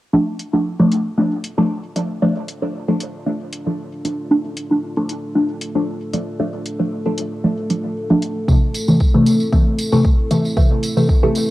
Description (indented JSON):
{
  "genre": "dub techno",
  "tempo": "115 BPM",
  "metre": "4/4",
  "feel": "swing 54% on 16ths",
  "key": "D minor",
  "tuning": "A4 = 440 Hz",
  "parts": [
    { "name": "dark analog pad", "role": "sustained chords", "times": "0.1-11.5 s", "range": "A3 to A4", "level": "-27 LUFS", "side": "equal", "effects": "chorus, sidechain pumping" },
    { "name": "filtered dub chord stab", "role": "stabs", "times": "0.1-11.5 s", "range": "C3 to D4", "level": "-17 LUFS", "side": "equal", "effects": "phaser, sidechain pumping, dub echo" },
    { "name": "electronic hi-hat", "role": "drums", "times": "0.4-11.5 s", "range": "none", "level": "-30 LUFS", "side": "left 1 dB", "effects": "overdrive, cassette tape" },
    { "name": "electronic kick drum", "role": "drums", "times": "8.5-11.2 s", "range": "none", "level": "-15 LUFS", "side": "equal", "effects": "overdrive, cassette tape" },
    { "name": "tambourine", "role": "percussion", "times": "8.5-11.5 s", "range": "none", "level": "-30 LUFS", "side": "right 2 dB", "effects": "none" }
  ],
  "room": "light reverb, digital ambience",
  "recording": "home recording on cassette",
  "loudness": "-16 LUFS",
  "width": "side -16 dB against mid",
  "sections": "0.1-11.5 A section",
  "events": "none",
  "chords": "0.1 Dm; 8.5 Am",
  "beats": "| 0.14 0.66 1.18 1.70 | 2.22 2.74 3.27 3.79 | 4.31 4.83 5.35 5.87 | 6.39 6.92 7.44 7.96 | 8.48 9.00 9.53 10.05 | 10.57 11.09"
}